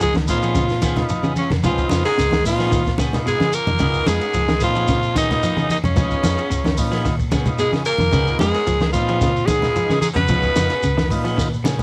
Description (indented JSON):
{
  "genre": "afrobeat",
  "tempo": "111 BPM",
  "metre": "4/4",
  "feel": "straight",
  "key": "Db mixolydian",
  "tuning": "A4 = 440 Hz",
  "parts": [
    { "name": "raspy alto saxophone", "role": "melody", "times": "0.0-11.2 s", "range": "Db4 to Cb5", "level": "-24 LUFS", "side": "equal", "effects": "cassette tape, analog delay" },
    { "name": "edgy baritone saxophone", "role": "second line", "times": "0.0-11.2 s", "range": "Db2 to Cb3", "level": "-36 LUFS", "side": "equal", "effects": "none" },
    { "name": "raspy tenor saxophone", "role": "second line", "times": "0.0-11.2 s", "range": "Db3 to Cb4", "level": "-33 LUFS", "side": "equal", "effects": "cassette tape" },
    { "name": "clean electric guitar", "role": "arpeggios", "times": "0.0-11.8 s", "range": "Cb3 to Ab3", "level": "-28 LUFS", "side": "equal", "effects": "lush chorus, cassette tape" },
    { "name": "clean electric guitar", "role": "stabs", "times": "0.0-11.8 s", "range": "F3 to Ab4", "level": "-34 LUFS", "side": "equal", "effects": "spring reverb, cassette tape" },
    { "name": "hollow-body short-scale fingered electric bass", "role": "bass", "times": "0.0-11.8 s", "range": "Db2 to Bb2", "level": "-26 LUFS", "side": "equal", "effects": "none" },
    { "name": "compact cocktail drum kit", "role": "drums", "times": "0.0-11.8 s", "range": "hi-hat, kick drum, ride cymbal, snare drum", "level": "-28 LUFS", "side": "equal", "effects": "none" },
    { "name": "shekere", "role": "percussion", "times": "0.0-11.8 s", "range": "none", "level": "-32 LUFS", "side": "equal", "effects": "none" },
    { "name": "congas", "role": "percussion", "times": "0.1-11.8 s", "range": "none", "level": "-26 LUFS", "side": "equal", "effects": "none" },
    { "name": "combo organ", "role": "accompaniment", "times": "0.3-11.8 s", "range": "Cb4 to Cb5", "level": "-30 LUFS", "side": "equal", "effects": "cassette tape" }
  ],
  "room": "light reverb",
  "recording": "home recording on cassette",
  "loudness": "-19 LUFS",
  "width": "mono",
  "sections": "0.0-11.8 A section",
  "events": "drum fill 11.4-11.8",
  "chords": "0.0 Db7",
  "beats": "0.01 0.55 1.10 | 1.64 2.18 2.72 3.26 | 3.81 4.35 4.89 5.43 | 5.97 6.51 7.05 7.59 | 8.13 8.68 9.21 9.76 | 10.30 10.84 11.38"
}